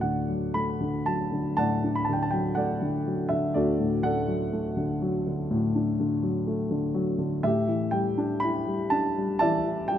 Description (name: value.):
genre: classical, lyrical solo piano.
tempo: 61 BPM.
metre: 4/4.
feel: rubato.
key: D major.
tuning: A4 = 440 Hz.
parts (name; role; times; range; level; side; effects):
dark grand piano; solo; 0.0-10.0 s; D2 to B5; -24 LUFS; equal; none.
room: light reverb.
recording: close, detailed microphones.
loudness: -24 LUFS.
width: side -10 dB against mid.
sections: 0.0-10.0 A section.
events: none.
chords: 0.0 D; 7.4 A7sus4.